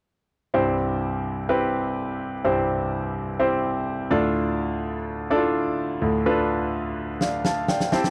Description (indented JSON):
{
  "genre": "piano-driven pop",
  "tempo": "126 BPM",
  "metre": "4/4",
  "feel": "straight",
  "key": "C major",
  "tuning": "A4 = 439 Hz",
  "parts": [
    { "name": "clear concert grand piano", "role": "accompaniment", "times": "0.5-8.1 s", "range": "C2 to A5", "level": "-25 LUFS", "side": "equal", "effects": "none" },
    { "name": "snare drum", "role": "drums", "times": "7.2-8.1 s", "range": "none", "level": "-28 LUFS", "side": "equal", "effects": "none" }
  ],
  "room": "studio reverb",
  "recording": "dry, close 1970s-style studio recording",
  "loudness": "-25 LUFS",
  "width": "mono",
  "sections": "0.5-8.1 A section",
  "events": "grand piano fill 7.2-8.1; drum fill 7.2-8.1",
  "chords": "0.5 C; 4.1 Dm"
}